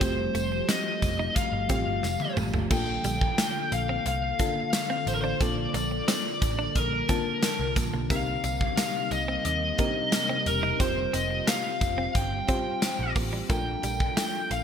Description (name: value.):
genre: 1980s-style pop.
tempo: 89 BPM.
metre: 4/4.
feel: straight.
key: unclear.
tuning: A4 = 440 Hz.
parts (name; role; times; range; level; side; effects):
biting lead guitar; melody; 0.0-14.6 s; Bb4 to G5; -29 LUFS; left 2 dB; overdrive.
mellow FM electric piano; accompaniment; 0.0-14.6 s; A3 to A5; -35 LUFS; left 2 dB; chorus.
glassy FM pad; sustained chords; 0.0-14.6 s; C3 to A4; -35 LUFS; left 1 dB; ensemble chorus, built-in reverb.
direct-recorded clean electric guitar; riff; 0.0-14.5 s; G3 to Eb4; -37 LUFS; right 5 dB; wide subtle chorus.
vintage muted picked electric bass; bass; 0.0-14.6 s; E1 to Eb2; -32 LUFS; right 1 dB; none.
gated 80s drum kit; drums; 0.0-14.6 s; crash cymbal, hi-hat, kick drum, snare drum, tambourine, toms; -28 LUFS; equal; gated reverb.
tambourine; percussion; 0.0-14.6 s; none; -43 LUFS; right 4 dB; none.
room: moderate plate reverb, RT60 3.6 s.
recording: bright 1980s-style digital production.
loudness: -24 LUFS.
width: side -8 dB against mid.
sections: 0.0-2.7 A section; 2.7-14.6 B section.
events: drum fill 2.0-2.7.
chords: 0.0 Fadd9; 2.7 Bbmaj7; 8.1 Cm7; 10.8 Fsus2; 13.5 Bbmaj7.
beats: | 0.01 0.69 1.36 2.04 | 2.71 3.38 4.06 4.73 | 5.41 6.08 6.75 7.43 | 8.10 8.78 9.45 10.12 | 10.80 11.47 12.15 12.82 | 13.50 14.17.